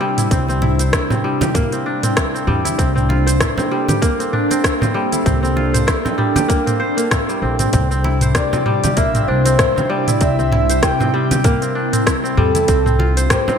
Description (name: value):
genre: organic downtempo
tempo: 97 BPM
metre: 4/4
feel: swing 57% on 16ths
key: C mixolydian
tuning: A4 = 440 Hz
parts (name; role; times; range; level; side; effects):
- ethereal airy pad; sustained chords; 0.0-13.6 s; C3 to A4; -21 LUFS; equal; ensemble chorus, built-in reverb, sidechain pumping
- kora; arpeggios; 0.0-13.6 s; G3 to C5; -21 LUFS; left 1 dB; digital delay
- organic electronic drum kit; drums; 0.2-13.6 s; cabasa, hi-hat, rim click, toms; -21 LUFS; equal; small room reverb, gated reverb
- congas; percussion; 0.2-13.6 s; none; -25 LUFS; right 2 dB; none
- upright bass; bass; 0.3-13.3 s; Bb1 to E2; -18 LUFS; equal; sidechain pumping
- electronic kick drum; drums; 0.3-13.4 s; none; -18 LUFS; equal; small room reverb
- breathy flute-like synth lead; melody; 8.4-13.6 s; A4 to G5; -20 LUFS; equal; analog chorus, digital delay
room: moderate lush hall reverb, RT60 2.4 s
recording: bright 1980s-style digital production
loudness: -14 LUFS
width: side -7 dB against mid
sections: 0.0-13.6 A section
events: none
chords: 0.0 C9; 2.8 Bbmaj9#11/C; 7.7 C9; 12.7 Bbmaj9#11/C